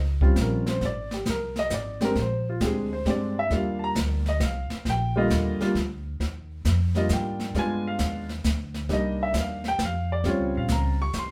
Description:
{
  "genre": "jazz piano trio",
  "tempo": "134 BPM",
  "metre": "3/4",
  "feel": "swing 67% on 8ths",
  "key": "Eb major",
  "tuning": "A4 = 440 Hz",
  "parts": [
    { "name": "upright bass", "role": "bass", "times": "0.0-11.3 s", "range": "Ab1 to Ab2", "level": "-30 LUFS", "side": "equal", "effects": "none" },
    { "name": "warm baby grand piano", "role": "melody", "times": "0.2-11.3 s", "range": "D3 to Db6", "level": "-29 LUFS", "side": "equal", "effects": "none" },
    { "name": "jazz brush drum kit", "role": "drums", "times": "0.2-11.3 s", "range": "brushed snare drum, hi-hat, kick drum, snare drum", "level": "-31 LUFS", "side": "equal", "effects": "none" }
  ],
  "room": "wet studio reverb, RT60 0.6 s",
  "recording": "band playing live in one room",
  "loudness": "-26 LUFS",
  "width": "mono",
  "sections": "0.0-6.2 A section; 6.2-11.3 A section",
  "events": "grand piano solo 0.0-11.3",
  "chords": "0.0 Eb13 (rootless); 0.8 Ab; 2.2 Bb13; 3.5 Ebmaj9; 7.6 G7b9; 8.9 Cm9; 10.3 Eb13"
}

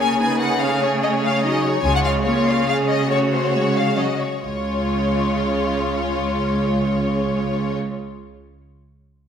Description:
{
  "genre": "quick classical-period movement for string orchestra",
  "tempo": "132-148 BPM",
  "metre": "3/4",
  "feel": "straight",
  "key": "Db major",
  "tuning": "A4 = 440 Hz",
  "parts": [
    { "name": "rich studio violin section", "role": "melody", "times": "0.0-7.8 s", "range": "C5 to Ab5", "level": "-24 LUFS", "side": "left 4 dB", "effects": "none" },
    { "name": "clear studio violin section", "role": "second line", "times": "0.0-7.8 s", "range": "F4 to Db5", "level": "-24 LUFS", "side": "left 1 dB", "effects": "none" },
    { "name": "dark studio viola section", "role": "accompaniment", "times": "0.0-7.8 s", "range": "Gb3 to Eb4", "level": "-23 LUFS", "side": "right 2 dB", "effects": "none" },
    { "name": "clear studio cello section", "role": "bass", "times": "0.0-7.8 s", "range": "Db3", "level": "-26 LUFS", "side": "right 1 dB", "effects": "none" },
    { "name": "rich studio double bass section", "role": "bass", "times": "1.8-2.2, 4.4-7.8 s", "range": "Db2", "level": "-26 LUFS", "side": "right 1 dB", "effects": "none" }
  ],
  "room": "wet scoring stage reverb, RT60 1.5 s",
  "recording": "none",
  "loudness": "-18 LUFS",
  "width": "side -8 dB against mid",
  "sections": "0.0-4.4 A section; 4.4-7.1 B section",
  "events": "slowing down 1.2-4.4",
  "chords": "0.0 Db5; 0.6 Gbm/Db; 1.8 Db; 3.1 Gbm/Db; 4.4 Db"
}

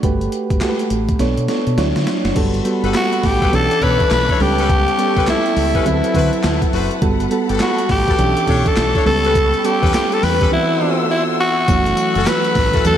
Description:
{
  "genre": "R&B, new jack swing",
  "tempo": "103 BPM",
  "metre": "4/4",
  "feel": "swing 62% on 16ths",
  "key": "unclear",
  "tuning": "A4 = 440 Hz",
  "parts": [
    { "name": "soft electric-piano-like synth keys", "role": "accompaniment", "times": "0.0-13.0 s", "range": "E3 to C#5", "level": "-20 LUFS", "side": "right 2 dB", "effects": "chorus" },
    { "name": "deep dub fingered electric bass", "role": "bass", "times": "0.0-13.0 s", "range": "F#1 to D3", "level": "-20 LUFS", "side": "equal", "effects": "none" },
    { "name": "breakbeat sampler-style drum kit", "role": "drums", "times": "0.0-13.0 s", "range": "crash cymbal, handclaps, hi-hat, kick drum, snare drum, tambourine", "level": "-20 LUFS", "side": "equal", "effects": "none" },
    { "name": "warm symphonic string section", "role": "sustained chords", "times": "2.4-13.0 s", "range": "G3 to E6", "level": "-27 LUFS", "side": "left 2 dB", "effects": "none" },
    { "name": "clear horn section", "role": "stabs", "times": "2.8-12.8 s", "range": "B3 to C#5", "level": "-26 LUFS", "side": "left 6 dB", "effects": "slapback echo" },
    { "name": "growling tenor saxophone", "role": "melody", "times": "3.0-13.0 s", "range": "E4 to B4", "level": "-17 LUFS", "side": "left 1 dB", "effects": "tape echo, slapback echo" }
  ],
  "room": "moderate lush hall reverb, RT60 2.2 s",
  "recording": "big arena sound, vinyl crackle",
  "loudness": "-14 LUFS",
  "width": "side -10 dB against mid",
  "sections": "0.0-2.4 A section; 2.4-11.7 B section; 11.7-13.0 C section",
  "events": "drum fill 1.2-2.4; silent gap 10.5-11.7",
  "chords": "0.0 Gmaj9; 1.2 Bm9; 1.8 Dmaj9; 2.4 Gmaj9; 3.5 Bm11; 4.4 A9/C#; 5.9 D13; 7.0 Gmaj9; 8.2 Bm11; 9.1 A9/C#; 10.5 Am69/E; 11.7 F#m7"
}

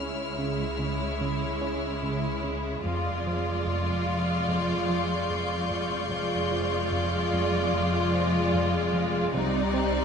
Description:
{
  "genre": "cinematic, suspense film score",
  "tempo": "74 BPM",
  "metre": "4/4",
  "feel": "straight",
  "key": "unclear",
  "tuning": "A4 = 441 Hz",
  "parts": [
    { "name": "rich studio violin section", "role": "melody", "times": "0.0-10.0 s", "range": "C#5 to D5", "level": "-34 LUFS", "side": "left 2 dB", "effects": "none" },
    { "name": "warm studio violin section", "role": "second line", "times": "0.0-10.0 s", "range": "Eb4 to F4", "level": "-31 LUFS", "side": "left 1 dB", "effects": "none" },
    { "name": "rich studio viola section", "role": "accompaniment", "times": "0.0-10.0 s", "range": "G3 to G#3", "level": "-32 LUFS", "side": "right 2 dB", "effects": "none" },
    { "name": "fat analog bass", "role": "riff", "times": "0.0-10.0 s", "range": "F2 to C#4", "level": "-33 LUFS", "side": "right 1 dB", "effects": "none" },
    { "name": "warm studio cello section", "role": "bass", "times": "0.0-10.0 s", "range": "C#2 to C3", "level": "-32 LUFS", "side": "equal", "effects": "none" },
    { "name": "warm studio double bass section", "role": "bass", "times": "0.0-10.0 s", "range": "F1 to C#2", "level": "-35 LUFS", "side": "right 2 dB", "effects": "none" },
    { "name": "rich studio violin section", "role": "texture", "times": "0.0-10.0 s", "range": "C6 to G6", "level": "-37 LUFS", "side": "left 5 dB", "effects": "none" }
  ],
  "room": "wet scoring stage reverb, RT60 1.5 s",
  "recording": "recorded in a church or concert hall, nothing above 10.3 kHz",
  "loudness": "-25 LUFS",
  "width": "side -6 dB against mid",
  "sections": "0.0-10.0 A section",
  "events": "none",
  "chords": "0.0 C#m; 2.8 Fm6; 9.3 Cmadd9"
}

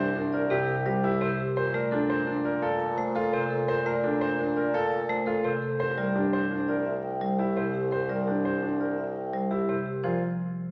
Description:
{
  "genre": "classical, minimalist pattern music",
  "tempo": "170 BPM",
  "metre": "6/4",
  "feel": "straight",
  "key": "Bb lydian",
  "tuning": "A4 = 440 Hz",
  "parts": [
    { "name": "vibraphone with medium mallets", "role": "melody", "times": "0.0-10.2 s", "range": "G4 to A5", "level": "-34 LUFS", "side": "equal", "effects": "none" },
    { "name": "clear baby grand piano", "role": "arpeggios", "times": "0.0-10.2 s", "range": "D4 to C5", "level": "-32 LUFS", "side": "equal", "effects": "none" },
    { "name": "warm bassoon", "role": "bass", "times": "0.0-10.2 s", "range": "C2 to Bb2", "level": "-35 LUFS", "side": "equal", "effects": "none" },
    { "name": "marimba with hard mallets", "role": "accompaniment", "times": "0.5-10.2 s", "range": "C3 to A3", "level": "-34 LUFS", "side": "equal", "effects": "none" }
  ],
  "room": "wet scoring stage reverb, RT60 1.5 s",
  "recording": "none",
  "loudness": "-28 LUFS",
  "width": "mono",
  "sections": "0.0-10.0 A section",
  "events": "none",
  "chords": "0.0 C7; 1.6 Bbmaj7; 5.8 C7(no3); 10.0 Bb5"
}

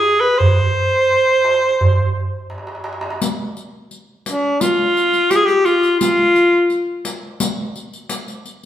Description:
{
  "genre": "Arabic maqam ensemble",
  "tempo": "86 BPM",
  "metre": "4/4",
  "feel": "straight",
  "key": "unclear",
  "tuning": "A4 = 440 Hz",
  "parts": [
    { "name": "bright alto saxophone", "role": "melody", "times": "0.0-7.0 s", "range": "D4-46c to C5", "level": "-14 LUFS", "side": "equal", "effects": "none" },
    { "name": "darbuka", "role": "percussion", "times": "0.4-3.2 s", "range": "none", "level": "-19 LUFS", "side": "right 2 dB", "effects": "none" },
    { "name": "riq", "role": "percussion", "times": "3.2-8.5 s", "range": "none", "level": "-24 LUFS", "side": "left 3 dB", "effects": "none" }
  ],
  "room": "wet large studio reverb, RT60 1.4 s",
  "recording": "band playing live in one room",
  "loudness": "-14 LUFS",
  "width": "side -11 dB against mid",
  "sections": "0.0-3.2 A section; 3.2-8.7 B section",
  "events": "drum fill 2.5-3.2",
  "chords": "none"
}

